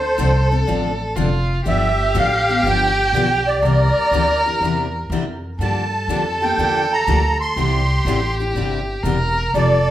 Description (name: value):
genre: acoustic string swing (jazz manouche)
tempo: 122 BPM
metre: 4/4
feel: swing 66% on 8ths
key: unclear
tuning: A4 = 440 Hz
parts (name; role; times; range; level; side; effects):
- musette accordion; melody; 0.0-9.9 s; C5 to C6; -19 LUFS; right 1 dB; none
- warm violin; second line; 0.0-9.9 s; F4 to Bb4; -22 LUFS; right 1 dB; none
- upright bass; bass; 0.0-9.9 s; E1 to G2; -21 LUFS; equal; none
- picked steel-string acoustic guitar; accompaniment; 0.2-9.8 s; C3 to A4; -25 LUFS; left 6 dB; none
- picked steel-string acoustic guitar; accompaniment; 0.2-9.8 s; C3 to C5; -30 LUFS; right 2 dB; none
room: moderate large studio reverb, RT60 0.8 s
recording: band playing live in one room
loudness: -16 LUFS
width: side -13 dB against mid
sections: 0.0-9.9 A section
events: none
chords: 0.0 Dm7; 1.7 G7; 3.6 Cadd9; 5.6 Gm7; 7.6 Cadd9